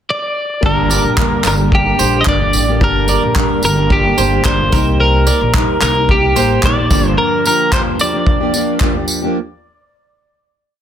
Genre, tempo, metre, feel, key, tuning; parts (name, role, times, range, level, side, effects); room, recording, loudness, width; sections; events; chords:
acoustic pop; 110 BPM; 4/4; straight; G minor; A4 = 441 Hz
twelve-string electric guitar; melody; 0.1-9.1 s; G4 to Eb5; -16 LUFS; equal; spring reverb
felt-muted upright piano; accompaniment; 0.6-6.9 s; Bb3 to A5; -28 LUFS; left 8 dB
fingerpicked plugged-in steel-string acoustic guitar; accompaniment; 0.6-9.4 s; G2 to G4; -18 LUFS; equal; double-tracked left and right
tonewheel organ; sustained chords; 0.6-5.0 s; D3 to G4; -26 LUFS; right 2 dB
upright bass; bass; 0.6-7.1 s; G1 to C2; -17 LUFS; equal
natural country drum kit; drums; 0.6-9.2 s; handclaps, kick drum, tambourine; -16 LUFS; equal
mandolin; arpeggios; 0.9-6.6 s; Bb4 to D5; -21 LUFS; right 8 dB
light reverb; dense, heavily limited modern master; -11 LUFS; side -9 dB against mid
0.0-0.6 pickup bar; 0.6-9.4 chorus
0.0 N.C.; 0.6 Gm; 4.7 Cm7; 6.9 Gm7